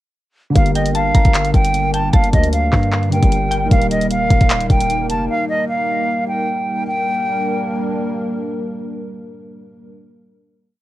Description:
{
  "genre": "hip hop, trap",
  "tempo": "152 BPM",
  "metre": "4/4",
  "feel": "half-time",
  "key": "G minor",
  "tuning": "A4 = 440 Hz",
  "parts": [
    { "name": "felt-muted upright piano", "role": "accompaniment", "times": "0.5-6.9 s", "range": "D3 to Bb4", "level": "-23 LUFS", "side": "equal", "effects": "none" },
    { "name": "silver concert flute", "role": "melody", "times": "0.6-8.0 s", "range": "Eb5 to A5", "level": "-20 LUFS", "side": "right 1 dB", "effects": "analog delay" },
    { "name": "dark analog pad", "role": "sustained chords", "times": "1.3-9.9 s", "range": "G3 to Bb4", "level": "-24 LUFS", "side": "equal", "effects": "chorus" },
    { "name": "hard-hitting 808-style bass", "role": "bass", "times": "0.6-5.3 s", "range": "Eb1 to G2", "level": "-20 LUFS", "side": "equal", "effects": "none" },
    { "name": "trap drum kit", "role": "drums", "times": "0.6-5.2 s", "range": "handclaps, hi-hat, kick drum", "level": "-15 LUFS", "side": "equal", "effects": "cassette tape" },
    { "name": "mallet-like synth pluck", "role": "second line", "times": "0.8-3.7 s", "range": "G5 to Bb5", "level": "-26 LUFS", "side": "left 1 dB", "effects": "chorus, analog delay" }
  ],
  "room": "little or no reverb",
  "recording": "home recording on cassette",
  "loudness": "-14 LUFS",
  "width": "side -15 dB against mid",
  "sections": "0.6-6.9 hook; 6.9-10.0 final chord",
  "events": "none",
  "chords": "0.6 Gm; 3.7 Eb; 6.9 Gm"
}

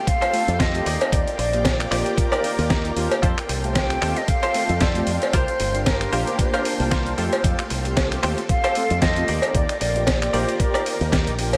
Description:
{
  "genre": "nu-disco, nu disco",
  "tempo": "114 BPM",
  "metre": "4/4",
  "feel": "swing 56% on 16ths",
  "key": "F mixolydian",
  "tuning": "A4 = 441 Hz",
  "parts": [
    { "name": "mellow silver concert flute", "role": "melody", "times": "0.0-11.4 s", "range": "Bb4 to G5", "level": "-28 LUFS", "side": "equal", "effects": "analog delay" },
    { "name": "string machine, full ensemble", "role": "sustained chords", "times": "0.0-11.6 s", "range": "Bb3 to D6", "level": "-36 LUFS", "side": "equal", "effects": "none" },
    { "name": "direct-recorded clean electric guitar", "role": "riff", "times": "0.1-11.6 s", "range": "Eb4 to D5", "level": "-32 LUFS", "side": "equal", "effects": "ensemble chorus, diffuse ambient delay" },
    { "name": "dusty soul sampler-style drum kit", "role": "drums", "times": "0.1-11.6 s", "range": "finger snaps, hi-hat, snare drum", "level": "-30 LUFS", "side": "equal", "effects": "none" },
    { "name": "electronic kick drum", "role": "drums", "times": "0.1-11.2 s", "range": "none", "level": "-25 LUFS", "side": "equal", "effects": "none" },
    { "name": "cowbell", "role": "percussion", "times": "0.2-11.6 s", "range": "none", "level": "-30 LUFS", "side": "equal", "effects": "none" },
    { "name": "mellow synth brass", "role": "accompaniment", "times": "0.3-11.6 s", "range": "A3 to A5", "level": "-30 LUFS", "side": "equal", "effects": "chorus, diffuse ambient delay" },
    { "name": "fingered electric bass with an envelope filter", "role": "bass", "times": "0.5-11.6 s", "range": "G1 to F2", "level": "-28 LUFS", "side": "equal", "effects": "none" }
  ],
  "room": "moderate huge ambient reverb, RT60 8.2 s",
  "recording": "dreamy mix soaked in reverb",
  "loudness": "-21 LUFS",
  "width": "mono",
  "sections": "0.0-11.6 A section",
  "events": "none",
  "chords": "0.0 Fadd9; 0.9 Ebmaj7; 3.2 Fadd9; 5.3 C7sus4; 7.2 Fadd9; 9.3 Ebmaj7"
}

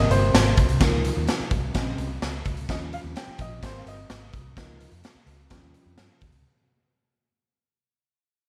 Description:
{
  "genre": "uptempo 1960s-style soul",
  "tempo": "128 BPM",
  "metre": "4/4",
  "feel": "straight",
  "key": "Eb mixolydian",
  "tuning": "A4 = 441 Hz",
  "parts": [
    { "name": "warm upright piano", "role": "accompaniment", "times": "0.0-6.2 s", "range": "C3 to G5", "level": "-31 LUFS", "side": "equal", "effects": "none" },
    { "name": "vintage muted fingered electric bass", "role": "bass", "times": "0.0-6.4 s", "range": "G1 to G2", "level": "-29 LUFS", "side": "equal", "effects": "none" },
    { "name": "raw garage drum kit", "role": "drums", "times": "0.1-6.4 s", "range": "hi-hat, kick drum, snare drum", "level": "-27 LUFS", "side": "equal", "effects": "none" }
  ],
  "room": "light reverb",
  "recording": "none",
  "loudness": "-24 LUFS",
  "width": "mono",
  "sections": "0.0-6.5 A section",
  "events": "fade-out 0.0-6.5; upright piano solo 0.0-6.5",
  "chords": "0.0 Abmaj7; 0.8 Db6; 1.8 Bbm7; 2.7 Eb7; 3.6 Abmaj7; 4.6 Db6; 5.5 Eb7"
}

